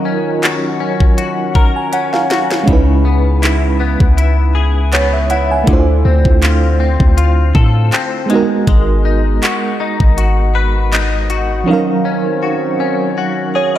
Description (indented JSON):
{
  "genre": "contemporary R&B",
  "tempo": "80 BPM",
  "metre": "4/4",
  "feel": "swing 54% on 16ths",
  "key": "unclear",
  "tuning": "A4 = 440 Hz",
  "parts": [
    { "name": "FM electric piano with tremolo", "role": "accompaniment", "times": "0.0-13.8 s", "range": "E#3 to A#5", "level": "-17 LUFS", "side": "right 4 dB", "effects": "none" },
    { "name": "direct-recorded clean electric guitar", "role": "arpeggios", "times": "0.0-13.8 s", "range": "C#3 to B4", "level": "-19 LUFS", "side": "left 7 dB", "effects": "ensemble chorus, tape echo" },
    { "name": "trap drum kit", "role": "drums", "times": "0.4-11.5 s", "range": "handclaps, hi-hat, kick drum, snare drum", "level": "-15 LUFS", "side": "equal", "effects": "none" },
    { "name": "warm 808-style bass", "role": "bass", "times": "2.7-11.6 s", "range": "G#1 to A2", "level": "-13 LUFS", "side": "equal", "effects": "none" },
    { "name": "swell", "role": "sound effects", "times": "11.3-13.2 s", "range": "none", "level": "-25 LUFS", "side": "right 6 dB", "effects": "none" }
  ],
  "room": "moderate plate reverb, RT60 2.5 s",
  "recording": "dreamy mix soaked in reverb",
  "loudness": "-11 LUFS",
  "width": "side -12 dB against mid",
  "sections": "0.0-13.8 A section",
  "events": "FM electric piano fill 1.2-2.7, 13.2-13.8; drum fill 1.9-2.7; swell 11.3-13.8",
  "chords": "0.0 D#m7; 2.7 C#m7; 5.7 Dm7; 8.3 G#m7; 11.7 D#m7"
}